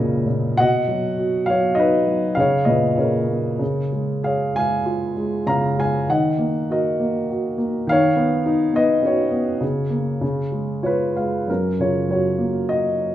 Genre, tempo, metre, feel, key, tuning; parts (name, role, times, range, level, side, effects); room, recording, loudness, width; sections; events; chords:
classical, lyrical solo piano; 93-107 BPM; 3/4; rubato; F# major; A4 = 440 Hz
dark baby grand piano; solo; 0.0-13.1 s; C#2 to A#5; -18 LUFS; equal
moderate recital hall reverb, RT60 1.5 s; minimal, uncompressed stereo recording; -18 LUFS; side -12 dB against mid
0.0-11.5 A section; 11.5-13.1 B section
grand piano fill 10.5-11.5
0.0 F#/C#; 0.6 B; 2.4 A#madd11; 3.6 C#; 6.1 D#m; 7.9 Badd9/D#; 9.6 F#/C#; 10.2 C#; 11.5 F#